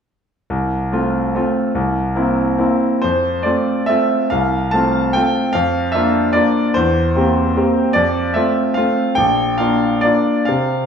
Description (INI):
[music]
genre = classical, piano waltz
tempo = 127-156 BPM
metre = 3/4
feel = rubato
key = F major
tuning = A4 = 440 Hz
[part]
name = bright grand piano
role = solo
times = 0.5-10.9 s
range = Bb1 to A5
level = -14 LUFS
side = equal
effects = none
[sound]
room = wet stone room reverb, RT60 1.4 s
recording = heard from further back in the room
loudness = -14 LUFS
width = side -7 dB against mid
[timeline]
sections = 0.5-3.0 A section; 3.0-10.9 B section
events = none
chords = 0.5 F/C; 1.7 C7; 3.0 F; 5.5 Bb/F; 6.8 C7/E; 7.9 F; 9.2 Bb